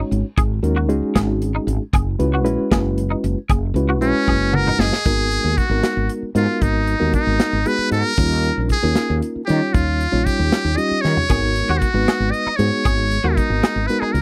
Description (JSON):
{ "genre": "electric jazz fusion", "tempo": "77 BPM (dotted quarters)", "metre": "6/8", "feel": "straight", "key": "G# dorian from 5.1 s", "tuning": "A4 = 440 Hz", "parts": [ { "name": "mellow reed electric piano", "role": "accompaniment", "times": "0.0-14.2 s", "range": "G3 to F#5", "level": "-24 LUFS", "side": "equal", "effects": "fast tremolo" }, { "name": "semi-hollow electric guitar", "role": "stabs", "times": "0.0-4.8, 11.3-14.2 s", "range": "D#4 to G#4", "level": "-29 LUFS", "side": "equal", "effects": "ensemble chorus" }, { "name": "woody fretless electric bass", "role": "bass", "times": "0.1-14.2 s", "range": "F#1 to D#3", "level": "-23 LUFS", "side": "equal", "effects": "analog chorus" }, { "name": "modern studio drum kit", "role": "drums", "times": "0.1-14.2 s", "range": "crash cymbal, hi-hat, kick drum, snare drum, toms", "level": "-22 LUFS", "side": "equal", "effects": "none" }, { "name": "trumpet with metal mute", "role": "melody", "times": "4.0-14.2 s", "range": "C#4 to D#5", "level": "-24 LUFS", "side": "equal", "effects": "none" } ], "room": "little or no reverb", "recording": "dry, close 1970s-style studio recording", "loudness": "-19 LUFS", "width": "mono", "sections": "0.0-5.1 A section; 5.1-14.2 B section", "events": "drum fill 4.3-5.1, 11.0; reed electric piano fill 4.3-5.1", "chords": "0.0 G#7sus4; 1.9 F#9sus4; 5.1 G#m9; 8.2 D#7; 11.3 G#m9" }